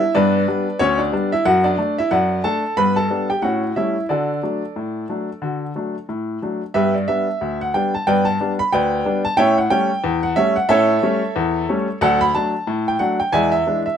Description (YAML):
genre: ragtime piano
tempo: 91 BPM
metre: 2/4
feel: swing 57% on 16ths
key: D major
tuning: A4 = 440 Hz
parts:
  - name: clear upright piano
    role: solo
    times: 0.0-14.0 s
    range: D2 to B5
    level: -17 LUFS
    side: equal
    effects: none
room: light reverb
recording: close, detailed microphones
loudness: -17 LUFS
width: side -8 dB against mid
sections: 0.0-6.8 A section; 6.8-14.0 B section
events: none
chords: 0.0 G; 1.5 D/F#; 2.8 G; 3.4 A7; 4.1 D; 6.8 G; 9.4 A7; 12.0 D; 13.3 E7